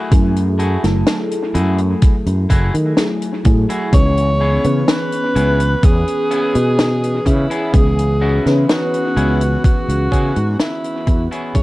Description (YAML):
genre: vaporwave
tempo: 63 BPM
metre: 4/4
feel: straight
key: C# minor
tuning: A4 = 441 Hz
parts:
  - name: mellow FM electric piano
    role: accompaniment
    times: 0.0-11.6 s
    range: E3 to B4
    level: -21 LUFS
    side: left 1 dB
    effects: lush chorus, analog delay
  - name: clean electric guitar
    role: riff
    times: 0.0-11.5 s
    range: A3 to G#4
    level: -27 LUFS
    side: left 1 dB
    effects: wide subtle chorus, vintage 12-bit sampler grit, analog delay
  - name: fretless electric bass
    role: bass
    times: 0.1-11.6 s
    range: F#1 to D#3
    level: -16 LUFS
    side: equal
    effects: tube saturation
  - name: compact cocktail drum kit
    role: drums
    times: 0.1-11.6 s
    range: hi-hat, snare drum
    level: -21 LUFS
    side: left 1 dB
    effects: studio reverb, analog delay
  - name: electronic kick drum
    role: drums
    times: 0.1-11.6 s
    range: none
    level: -13 LUFS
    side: equal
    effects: overdrive, studio reverb
  - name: bright alto saxophone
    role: melody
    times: 3.9-11.6 s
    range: E4 to C#5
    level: -20 LUFS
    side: equal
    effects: vintage 12-bit sampler grit, tape echo
room: light reverb, small room ambience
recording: echo-heavy mix, cassette tape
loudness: -13 LUFS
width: side -18 dB against mid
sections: 0.0-11.6 A section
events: fade-out 9.0-11.6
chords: 0.0 F#m9; 3.9 C#m7